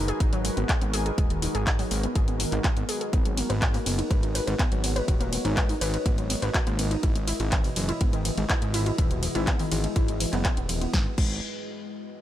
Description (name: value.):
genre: melodic techno.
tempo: 123 BPM.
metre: 4/4.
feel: straight.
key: G# minor.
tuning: A4 = 442 Hz.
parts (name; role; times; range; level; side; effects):
deep dark ambient pad; sustained chords; 0.0-11.2 s; G#3 to D#5; -34 LUFS; equal; chorus, built-in reverb, sidechain pumping.
warbly dusty pluck; arpeggios; 0.0-11.4 s; B2 to B4; -31 LUFS; left 1 dB; lush chorus, sidechain pumping, dub echo.
fat analog bass; bass; 0.0-11.4 s; D#1 to G#1; -29 LUFS; equal; tube saturation, sidechain pumping.
house drum kit; drums; 0.1-11.3 s; crash cymbal, handclaps, hi-hat, ride cymbal, snare drum; -31 LUFS; left 1 dB; studio reverb.
electronic kick drum; drums; 0.2-11.3 s; none; -25 LUFS; equal; studio reverb.
room: digital ambience.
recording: none.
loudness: -23 LUFS.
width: side -12 dB against mid.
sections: 0.0-10.9 A section; 10.9-12.2 B section.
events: drop 0.0-10.9.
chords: 0.0 G#m7; 3.1 Bmaj7; 7.0 Emaj7; 10.9 G#m7.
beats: 0.20 0.69 | 1.18 1.67 2.15 2.64 | 3.13 3.62 4.11 4.59 | 5.08 5.57 6.06 6.55 | 7.03 7.52 8.01 8.50 | 8.98 9.47 9.96 10.45 | 10.94.